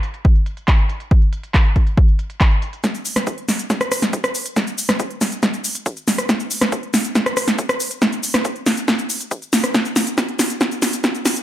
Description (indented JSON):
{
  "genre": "trance",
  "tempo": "139 BPM",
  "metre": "4/4",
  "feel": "straight",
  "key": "none",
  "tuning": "none",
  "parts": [
    { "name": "big-room dance drum kit", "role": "drums", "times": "0.0-11.4 s", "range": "handclaps, hi-hat, rim click, shaker, snare drum", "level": "-18 LUFS", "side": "equal", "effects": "overdrive, sidechain pumping on hats, low-pass filter on hats, low-pass filter on snare, sidechain pumping on perc, low-pass filter on perc, low-pass filter on room" },
    { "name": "electronic kick drum", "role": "drums", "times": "0.2-11.1 s", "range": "none", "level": "-16 LUFS", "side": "equal", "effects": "high-pass filter on kick" }
  ],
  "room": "light reverb",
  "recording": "high-pass filter",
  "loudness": "-16 LUFS",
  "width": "side -12 dB against mid",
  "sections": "0.0-2.8 A section; 2.8-11.4 B section",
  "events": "build-up 2.8-11.4; drum fill 2.8-11.4",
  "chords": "none",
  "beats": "0.25 0.68 | 1.11 1.54 1.98 2.41 | 2.84 3.27 3.70 4.13 | 4.57 5.00 5.43 5.86 | 6.29 6.72 7.16 7.59 | 8.02 8.45 8.88 9.31 | 9.75 10.18 10.61 11.04"
}